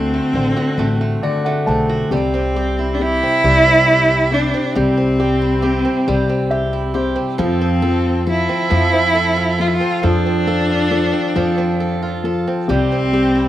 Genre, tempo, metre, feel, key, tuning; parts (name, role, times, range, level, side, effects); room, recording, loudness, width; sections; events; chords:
acoustic folk-pop ballad; 45 BPM (dotted quarters); 6/8; straight; C major; A4 = 440 Hz
rich cello; melody; 0.0-13.5 s; C4 to F4; -17 LUFS; right 1 dB; slapback echo
warm upright piano; accompaniment; 0.0-13.5 s; C3 to A5; -20 LUFS; left 3 dB
picked swing-style acoustic guitar; arpeggios; 0.0-13.5 s; F3 to A4; -23 LUFS; right 4 dB; slapback echo
upright bass; bass; 0.0-13.5 s; A1 to F2; -21 LUFS; equal
little or no reverb; recorded outdoors, with no room sound; -14 LUFS; side -13 dB against mid
0.0-2.1 A section; 2.1-13.5 B section
0.0 D7; 2.1 C; 7.4 F; 12.7 C